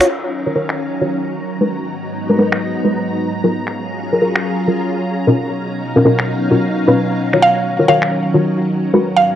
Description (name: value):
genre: UK garage, two-step garage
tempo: 131 BPM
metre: 4/4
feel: swing 60% on 16ths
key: Eb minor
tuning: A4 = 440 Hz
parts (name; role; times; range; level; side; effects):
- soft string machine; sustained chords; 0.0-9.4 s; Ab2 to Bb5; -19 LUFS; equal; ensemble chorus
- deep mellow chord stab; stabs; 0.0-9.4 s; Cb3 to C#5; -15 LUFS; left 1 dB; chorus, tape echo
- boom bap sampler-style drum kit; drums; 0.0-8.1 s; cabasa, crash cymbal, finger snaps; -21 LUFS; equal; low-pass filter on hats, low-pass filter on perc, low-pass filter on snare, low-pass filter on cymbals
- mallet-like synth pluck; melody; 7.4-9.4 s; F5; -14 LUFS; right 2 dB; chorus, analog delay
room: moderate digital room reverb, RT60 1.2 s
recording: dry, gritty hardware recording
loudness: -14 LUFS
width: side -11 dB against mid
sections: 0.1-9.4 A section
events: none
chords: 0.1 Ebm9; 1.7 Abm9; 3.5 Gbmaj7; 5.4 Bmaj9#11; 7.4 Ebm9